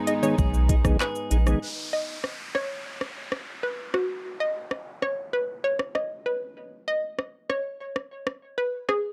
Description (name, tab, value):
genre	dancehall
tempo	97 BPM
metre	4/4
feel	straight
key	G# minor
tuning	A4 = 439 Hz
part	warm studio string section	sustained chords	0.0-1.6 s	D#3 to D#4	-34 LUFS	equal	sidechain pumping
part	clean electric guitar	arpeggios	0.0-2.2 s	G#2 to G#4	-38 LUFS	equal	plate reverb
part	hollow square pluck	melody	0.1-9.0 s	F#4 to D#5	-31 LUFS	equal	chorus, tape echo
part	tonewheel organ	accompaniment	0.1-1.6 s	D#3 to G#4	-30 LUFS	equal	chorus vibrato, slow rotary speaker
part	island pop drum kit	drums	0.1-9.0 s	handclaps, hi-hat, kick drum, rim click, shaker	-28 LUFS	equal	overdrive
part	round analog bass	bass	0.4-1.5 s	A#1 to B1	-24 LUFS	equal	none
part	downlifter	sound effects	1.6-6.6 s	none	-41 LUFS	equal	none
room	light reverb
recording	dark, warm production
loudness	-28 LUFS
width	mono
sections	0.0-1.6 A section; 1.6-9.1 B section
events	none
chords	0.0 G#m; 1.6 N.C.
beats	0.38 1.00 | 1.62 2.24 2.86 3.48 | 4.09 4.71 5.33 5.95 | 6.57 7.19 7.81 8.43